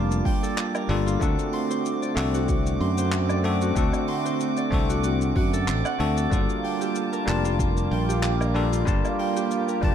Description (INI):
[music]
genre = sunset chillout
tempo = 94 BPM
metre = 4/4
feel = swing 54% on 16ths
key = G minor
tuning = A4 = 440 Hz
[part]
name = barky tine electric piano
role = accompaniment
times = 0.0-9.9 s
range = G3 to A5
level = -27 LUFS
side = moving between left 7 dB and right 5 dB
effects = auto-pan, tape echo
[part]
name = lush unison pad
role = sustained chords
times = 0.0-9.9 s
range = D3 to A5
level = -30 LUFS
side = equal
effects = chorus
[part]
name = Celtic harp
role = arpeggios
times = 0.0-9.9 s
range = F4 to C6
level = -32 LUFS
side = right 2 dB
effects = tape echo
[part]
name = modern bright fingered electric bass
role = bass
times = 0.0-9.9 s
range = F1 to F#2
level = -25 LUFS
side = equal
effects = none
[part]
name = drifting glass-harmonics texture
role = texture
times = 0.0-9.9 s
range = D6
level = -36 LUFS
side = right 5 dB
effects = chorus, built-in reverb
[part]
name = jazz brush drum kit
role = drums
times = 0.1-9.9 s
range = handclaps, hi-hat, shaker, woodblock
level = -35 LUFS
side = left 1 dB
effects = none
[part]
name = electronic kick drum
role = drums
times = 0.3-9.9 s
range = none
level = -25 LUFS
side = equal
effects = none
[sound]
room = light reverb, studio reverb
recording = dark, warm production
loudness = -22 LUFS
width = side -9 dB against mid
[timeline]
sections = 0.0-9.9 A section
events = none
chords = 0.0 Gm9; 1.2 D7; 6.3 Gm9